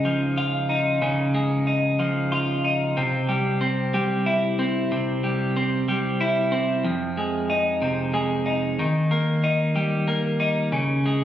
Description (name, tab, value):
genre	pop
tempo	62 BPM (dotted quarters)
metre	6/8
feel	straight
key	F minor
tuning	A4 = 440 Hz
part	twelve-string electric guitar	solo	0.0-11.2 s	F2 to F4	-21 LUFS	equal	tape echo
room	moderate echo chamber reverb, RT60 2.3 s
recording	recorded on a phone in the room, studio reverb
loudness	-21 LUFS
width	side -11 dB against mid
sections	0.0-6.8 A section; 6.8-11.2 B section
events	none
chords	0.0 Dbadd9; 3.0 C; 6.8 Fm7; 8.8 Eb; 10.7 Db5